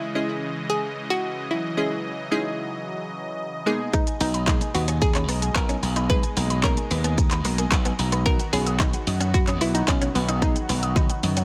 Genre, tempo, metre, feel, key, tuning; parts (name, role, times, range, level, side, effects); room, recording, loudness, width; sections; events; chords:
dance-pop; 111 BPM; 4/4; straight; C# dorian; A4 = 442 Hz
hollow square pluck; melody; 0.0-11.4 s; B3 to B4; -30 LUFS; equal; chorus, digital delay
soft supersaw; sustained chords; 0.0-11.4 s; B2 to D#5; -35 LUFS; equal; phaser, sidechain pumping
wavetable chord stab; accompaniment; 0.1-11.4 s; D#3 to D#5; -32 LUFS; equal; sidechain pumping
mallet-like synth pluck; arpeggios; 3.9-11.4 s; B4 to D#6; -36 LUFS; equal; chorus, sidechain pumping, digital delay
direct-recorded clean electric guitar; riff; 3.9-11.4 s; G#3 to D#4; -34 LUFS; equal; ensemble chorus
pop drum kit; drums; 3.9-11.4 s; handclaps, hi-hat, kick drum, shaker, toms; -26 LUFS; equal
glassy slap bass; bass; 4.2-11.4 s; B1 to F#2; -27 LUFS; equal; sidechain pumping
light reverb; -24 LUFS; mono
0.0-11.4 A section
drum fill 10.4-11.4
0.0 C#madd9; 3.7 G#madd9/B; 8.3 B